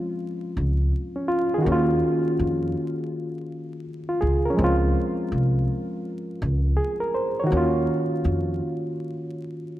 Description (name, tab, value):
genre	lo-fi hip hop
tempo	82 BPM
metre	4/4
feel	swing 65% on 16ths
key	Db major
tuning	A4 = 440 Hz
part	barky reed electric piano	accompaniment	0.0-9.8 s	Eb3 to Db5	-24 LUFS	equal	overdrive, cassette tape, low-pass filter
part	upright bass	bass	0.6-8.6 s	C2 to F2	-23 LUFS	equal	none
room	moderate lush hall reverb, RT60 2.8 s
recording	dreamy mix soaked in reverb, vinyl crackle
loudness	-22 LUFS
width	side -14 dB against mid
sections	0.0-9.8 A section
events	none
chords	0.0 Dbmaj7; 1.7 Ebm9; 4.6 Dbmaj7; 7.5 Ebm9